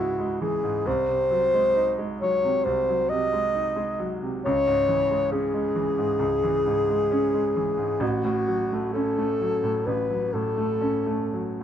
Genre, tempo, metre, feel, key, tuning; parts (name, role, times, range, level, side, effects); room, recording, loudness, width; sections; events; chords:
classical, romantic duo for alto saxophone and grand piano; 57-69 BPM; 4/4; rubato; C# minor; A4 = 440 Hz
mellow alto saxophone; melody; 0.0-11.5 s; F#4 to D#5; -23 LUFS; left 1 dB
bright grand piano; accompaniment; 0.0-11.6 s; A1 to E4; -27 LUFS; right 2 dB
little or no reverb; minimal, uncompressed stereo recording; -22 LUFS; side -9 dB against mid
0.0-11.6 A section
0.0 C#m; 0.9 G#7/B#; 4.4 C#m; 8.0 F#m/A